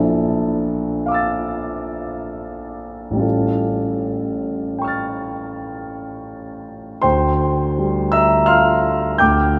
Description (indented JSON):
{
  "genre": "classical, impressionist solo piano",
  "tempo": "74-90 BPM",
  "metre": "5/4",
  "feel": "rubato",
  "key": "D minor",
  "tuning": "A4 = 440 Hz",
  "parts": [
    { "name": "warm concert grand piano", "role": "solo", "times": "0.0-9.6 s", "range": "A1 to A6", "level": "-20 LUFS", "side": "equal", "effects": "none" }
  ],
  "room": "wet cathedral reverb, RT60 6.6 s",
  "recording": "recorded in a church or concert hall",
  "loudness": "-19 LUFS",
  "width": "mono",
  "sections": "0.0-7.0 A section; 7.0-9.6 B section",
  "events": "none",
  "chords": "0.0 Bbmaj7#11; 3.2 Aaug7; 7.0 Dm11",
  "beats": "0.39 1.06 1.74 2.46 | 3.23 4.01 4.79 5.55 6.27 | 7.04 7.78 8.49 9.20"
}